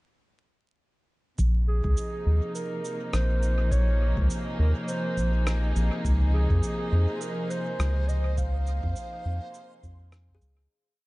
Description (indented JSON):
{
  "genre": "ambient dub",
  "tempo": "103 BPM",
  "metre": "4/4",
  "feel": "swing 57% on 16ths",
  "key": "Bb minor",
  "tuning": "A4 = 440 Hz",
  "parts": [
    { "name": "warm chamber string section", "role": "sustained chords", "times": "1.4-10.7 s", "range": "C3 to Ab4", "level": "-34 LUFS", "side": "equal", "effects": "none" },
    { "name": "round analog bass", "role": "bass", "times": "1.4-10.7 s", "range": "Bb1 to F2", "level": "-23 LUFS", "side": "equal", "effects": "none" },
    { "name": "electronic cabasa and rim click", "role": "drums", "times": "1.4-10.5 s", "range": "none", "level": "-39 LUFS", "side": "right 1 dB", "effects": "studio reverb, dub echo" },
    { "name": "electronic kick drum", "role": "drums", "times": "1.4-10.4 s", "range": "none", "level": "-31 LUFS", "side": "equal", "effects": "studio reverb" },
    { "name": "dark clarinet", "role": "melody", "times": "1.7-10.4 s", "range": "Ab4 to F5", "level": "-34 LUFS", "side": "right 2 dB", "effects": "dub echo" },
    { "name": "backwards swelling texture", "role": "texture", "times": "6.9-10.7 s", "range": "C5", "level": "-44 LUFS", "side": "equal", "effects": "built-in reverb" },
    { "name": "kalimba", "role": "arpeggios", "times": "10.3-11.1 s", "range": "Ab4", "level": "-74 LUFS", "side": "left 4 dB", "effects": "none" }
  ],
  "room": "little or no reverb",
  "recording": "echo-heavy mix, vinyl crackle, nothing above 10.4 kHz",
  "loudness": "-24 LUFS",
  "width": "side -21 dB against mid",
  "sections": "1.4-10.7 groove",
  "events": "fade-out 7.6-10.7",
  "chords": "1.4 Bb7sus2; 6.0 Dbmaj7",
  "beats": "| 1.39 1.97 2.55 3.13 | 3.72 4.30 4.88 5.46 | 6.05 6.63 7.21 7.79 | 8.38 8.96 9.54 10.12"
}